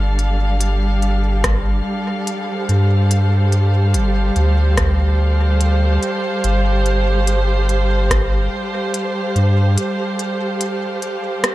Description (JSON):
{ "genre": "ambient dub", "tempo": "72 BPM", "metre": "4/4", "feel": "straight", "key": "unclear", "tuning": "A4 = 441 Hz", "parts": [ { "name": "dark chamber string section", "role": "sustained chords", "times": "0.0-11.5 s", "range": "G3 to F5", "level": "-20 LUFS", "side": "right 1 dB", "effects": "none" }, { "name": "soft dub sub bass", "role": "bass", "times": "0.0-9.8 s", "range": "G1 to G2", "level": "-15 LUFS", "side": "equal", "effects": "none" }, { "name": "organic electronic drum kit", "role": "drums", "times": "0.2-11.5 s", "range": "hi-hat, rim click", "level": "-22 LUFS", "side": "equal", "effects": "dub echo" }, { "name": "electronic kick drum", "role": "drums", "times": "1.4-8.3 s", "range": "none", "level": "-23 LUFS", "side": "equal", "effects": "none" } ], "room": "light reverb, digital ambience", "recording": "none", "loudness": "-15 LUFS", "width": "side -16 dB against mid", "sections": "0.0-11.5 A section", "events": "break 9.8-11.5", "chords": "0.0 Fadd9/G" }